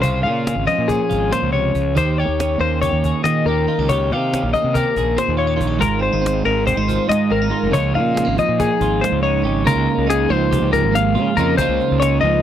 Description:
math rock and midwest emo; 280 BPM (eighths); 9/8; straight; Db lydian; A4 = 440 Hz
twelve-string electric guitar; accompaniment; 0.0-12.4 s; Ab2 to Ab4; -21 LUFS; right 9 dB
twelve-string electric guitar; arpeggios; 0.0-12.4 s; Ab4 to F5; -19 LUFS; left 6 dB
fuzz fingered electric bass; bass; 0.0-12.4 s; F1 to Eb3; -21 LUFS; equal; overdrive
cajon; drums; 0.0-12.3 s; -25 LUFS; equal
little or no reverb; dry, close 1970s-style studio recording; -15 LUFS; side -10 dB against mid
0.0-9.7 A section; 9.7-12.4 B section
kick and snare drop out 9.3-9.7
0.0 Dbmaj7; 2.0 Eb7; 5.8 Ab69; 7.7 Db69

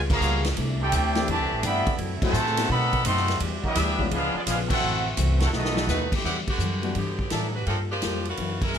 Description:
jazz, big band swing; 169 BPM; 4/4; swing 66% on 8ths; E minor; A4 = 440 Hz
fingerpicked steel-string acoustic guitar; accompaniment; 0.0-8.8 s; F#2 to A4; -33 LUFS; left 6 dB
warm saxophone section; sustained chords; 0.0-6.2 s; B2 to G4; -38 LUFS; left 1 dB
upright bass; bass; 0.0-8.8 s; A1 to B2; -27 LUFS; equal
clear trumpet section; melody; 0.1-6.1 s; B3 to C6; -27 LUFS; equal
bright trombone section; second line; 0.1-6.1 s; A2 to G4; -31 LUFS; right 3 dB
swinging big-band drum kit; drums; 0.1-8.8 s; crash cymbal, hi-hat, kick drum, ride cymbal, snare drum; -29 LUFS; equal
warm grand piano; accompaniment; 1.2-4.1, 6.8-6.9 s; E3 to G4; -32 LUFS; left 6 dB
edgy saxophone section; melody; 5.9-8.8 s; D3 to B4; -30 LUFS; right 1 dB
clear trumpet section; stabs; 6.2-8.8 s; G4 to A5; -34 LUFS; right 1 dB
light reverb; close, detailed microphones; -22 LUFS; side -8 dB against mid
0.0-6.2 A section; 6.2-8.8 B section
band accent 0.0, 2.2, 4.6, 6.4, 8.6; drum fill 5.5-5.9
0.0 C#7#11; 0.6 C69; 2.0 F#m7b5; 2.7 B7b9; 3.4 Em9; 4.1 C#7b9; 4.8 F#m7b5; 5.5 B7; 6.2 Em9; 7.7 Gm9

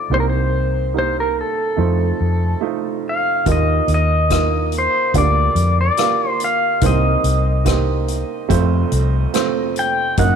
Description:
acoustic folk-pop ballad; 72 BPM; 4/4; straight; A4 = 440 Hz
pedal steel guitar; melody; 0.0-10.4 s; A4 to G5; -19 LUFS; left 2 dB
warm upright piano; accompaniment; 0.0-10.4 s; F1 to F5; -22 LUFS; right 11 dB
vintage muted fingered electric bass; bass; 0.1-10.4 s; C2 to Gb2; -18 LUFS; left 1 dB
soft-mallet drum kit; drums; 3.5-10.4 s; hi-hat, kick drum, rim click; -23 LUFS; left 4 dB
light reverb, small room ambience; 1960s-style stereo; -15 LUFS; side -7 dB against mid
0.0-3.5 A section; 3.5-10.4 B section
0.1 Cm7; 1.8 F7; 3.5 Ebsus2; 5.2 Bb6/D; 6.8 Cm7; 8.5 F

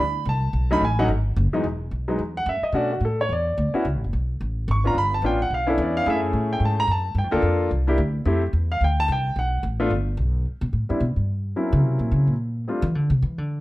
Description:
jazz, small-group swing and bop; 218 BPM; 4/4; swing 59% on 8ths; A4 = 441 Hz
warm concert grand piano; accompaniment; 0.0-12.8 s; E2 to C#6; -23 LUFS; equal
upright bass; bass; 0.0-13.6 s; E1 to E3; -23 LUFS; equal
light reverb; -20 LUFS; side -17 dB against mid
0.0-1.6 A section; 1.6-10.5 A section; 10.5-13.6 A section
upright bass solo 10.5-13.6
0.0 Cmaj7(no3); 0.5 B7; 1.6 Emaj7sus2; 2.8 Bm9; 3.3 Esus2; 3.9 Aadd9; 5.0 G7#11; 6.1 F#m9; 7.2 Gm9; 7.7 C9; 8.3 Fmaj7; 9.4 B5; 9.9 G; 10.5 Cmaj7(no3) (rootless); 11.6 F#7#11; 12.7 F69

